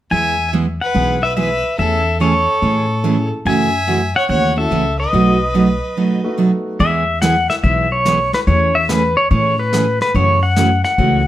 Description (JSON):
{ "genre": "country, western swing", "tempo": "144 BPM", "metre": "4/4", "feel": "swing 67% on 8ths", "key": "E major", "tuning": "A4 = 441 Hz", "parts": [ { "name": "pedal steel guitar", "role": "melody", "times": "0.1-11.3 s", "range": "B4 to G#5", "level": "-17 LUFS", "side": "left 2 dB", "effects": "none" }, { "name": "clear fiddle", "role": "second line", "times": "0.1-6.3 s", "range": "A4 to E5", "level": "-23 LUFS", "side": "right 2 dB", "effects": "none" }, { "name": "picked steel-string acoustic guitar", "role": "accompaniment", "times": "0.1-11.2 s", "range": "B2 to G#4", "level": "-18 LUFS", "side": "right 3 dB", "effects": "none" }, { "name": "upright bass", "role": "bass", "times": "0.1-11.3 s", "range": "B1 to A2", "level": "-19 LUFS", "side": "left 1 dB", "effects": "none" }, { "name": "warm upright piano", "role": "accompaniment", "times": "3.0-6.8 s", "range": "A3 to G#4", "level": "-24 LUFS", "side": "equal", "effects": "none" }, { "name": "vintage brush drum kit", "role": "drums", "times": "6.8-11.3 s", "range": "brushed snare drum, hi-hat, kick drum, snare drum", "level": "-22 LUFS", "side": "left 1 dB", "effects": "none" } ], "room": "moderate studio reverb, RT60 0.7 s", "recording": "none", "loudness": "-13 LUFS", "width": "side -13 dB against mid", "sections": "0.1-6.8 A section; 6.8-11.3 B section", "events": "break 6.0-6.8", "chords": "0.1 E; 1.8 Amaj7/E; 3.5 F#m7; 5.1 B7; 6.8 E; 8.5 Amaj7/E; 10.1 F#m7" }